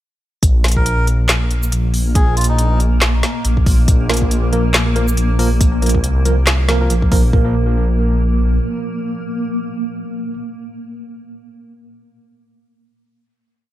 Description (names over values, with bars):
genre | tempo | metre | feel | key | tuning
deep dubstep | 139 BPM | 4/4 | swing 57% on 16ths, half-time | unclear | A4 = 441 Hz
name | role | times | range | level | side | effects
granular cloud pad | sustained chords | 1.2-10.3 s | Bb3 | -25 LUFS | equal | built-in reverb
dark detuned saw bass | bass | 0.4-8.6 s | Bb1 to C2 | -15 LUFS | equal | none
deep house drum kit | drums | 0.4-7.2 s | handclaps, hi-hat, shaker, snare drum | -19 LUFS | equal | none
electronic kick drum | drums | 0.4-7.4 s | none | -15 LUFS | equal | none
melodica | melody | 0.8-2.8 s | Eb4 to Bb4 | -26 LUFS | equal | dub echo
tine electric piano | stabs | 4.1-10.3 s | F3 to Bb4 | -22 LUFS | right 2 dB | overdrive, medium stereo tremolo, dub echo
room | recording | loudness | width
digital ambience | none | -13 LUFS | side -14 dB against mid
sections
0.4-7.3 drop; 7.3-10.8 final chord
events
drop 0.4-7.3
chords
0.4 Bb5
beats
| 0.43 0.86 1.29 1.72 | 2.15 2.58 3.02 3.45 | 3.88 4.31 4.74 5.17 | 5.61 6.04 6.47 6.90 | 7.33 7.76 8.20 8.63 | 9.06 9.49 9.92